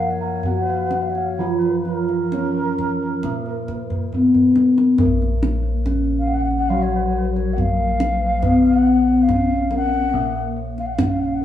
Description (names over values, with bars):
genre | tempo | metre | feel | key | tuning
Javanese gamelan | 61-70 BPM | 4/4 | straight | Bb pelog | A4 = 440 Hz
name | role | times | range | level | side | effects
gamelan-type bronze metallophone | melody | 0.0-11.4 s | Bb3 to Bb4 | -20 LUFS | left 2 dB | none
mellow low xiao | second line | 0.0-11.4 s | Bb4 to Gb5 | -26 LUFS | left 2 dB | slapback echo
gamelan-type bronze metallophone | accompaniment | 0.0-11.4 s | F3 to Cb4+35c | -28 LUFS | equal | none
gamelan-type bossed gongs | arpeggios | 0.0-5.0 s | Bb4 to Gb5 | -33 LUFS | left 1 dB | none
gamelan-type bronze metallophone | arpeggios | 0.0-11.4 s | Bb4 to Bb5 | -31 LUFS | right 1 dB | none
gamelan-type bossed gongs | bass | 0.0-11.4 s | Bb1 to Cb5+35c | -24 LUFS | equal | none
kendang | percussion | 0.4-11.2 s | none | -24 LUFS | right 1 dB | none
room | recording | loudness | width
wet spring reverb, RT60 1.3 s | heard from further back in the room, studio reverb | -17 LUFS | side -11 dB against mid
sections
0.0-5.0 A section; 5.0-11.4 B section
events
drum fill 3.9-5.0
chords
none